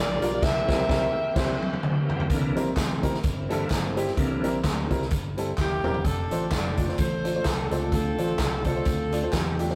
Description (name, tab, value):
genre	uptempo gospel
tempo	128 BPM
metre	4/4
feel	swing 56% on 8ths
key	unclear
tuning	A4 = 441 Hz
part	bright saxophone section	melody	0.0-1.8, 5.6-9.8 s	Bb3 to E5	-31 LUFS	equal	none
part	bright tonewheel organ	sustained chords	0.0-4.5 s	D3 to G4	-36 LUFS	equal	slow rotary speaker, chorus vibrato
part	fingered electric bass	bass	0.0-9.7 s	Eb1 to E2	-34 LUFS	equal	none
part	warm upright piano	accompaniment	0.2-9.8 s	C3 to D5	-32 LUFS	equal	none
part	swinging big-band drum kit	drums	0.2-9.7 s	crash cymbal, hi-hat, kick drum, snare drum, toms	-29 LUFS	equal	none
part	tambourine and handclaps	percussion	0.2-9.7 s	none	-42 LUFS	equal	none
part	warm studio string section	sustained chords	2.3-6.0 s	G3 to E4	-41 LUFS	equal	none
room	moderate stone room reverb, RT60 1.5 s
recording	rough rehearsal-room recording, tube saturation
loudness	-26 LUFS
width	mono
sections	0.0-2.3 A section; 2.3-6.0 B section; 6.0-9.8 C section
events	band accent 0.4-2.3; drum fill 1.4-2.3, 5.6-6.0; tonewheel organ solo 2.3-6.0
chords	0.4 C7; 6.0 F6; 7.9 Dm7